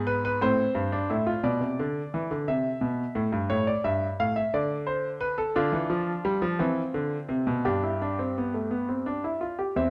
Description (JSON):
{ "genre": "classical, baroque-style 3-part fugue for grand piano", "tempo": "58 BPM (dotted quarters)", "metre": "6/8", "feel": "straight", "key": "A minor", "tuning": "A4 = 438 Hz", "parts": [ { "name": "clear concert grand piano", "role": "solo", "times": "0.0-9.9 s", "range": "E2 to F5", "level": "-28 LUFS", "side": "equal", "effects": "none" } ], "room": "moderate recital hall reverb, RT60 1.5 s", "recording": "close, detailed microphones", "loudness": "-28 LUFS", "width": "mono", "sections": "0.0-1.5 A section; 1.5-9.8 B section", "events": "none", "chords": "0.4 Am; 1.5 Bmadd11; 2.5 C; 3.5 A7; 4.5 D5; 5.6 Dm7; 7.6 G", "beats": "0.42 | 1.45 2.48 | 3.50 4.53 | 5.56 6.59 | 7.65 8.71 | 9.77" }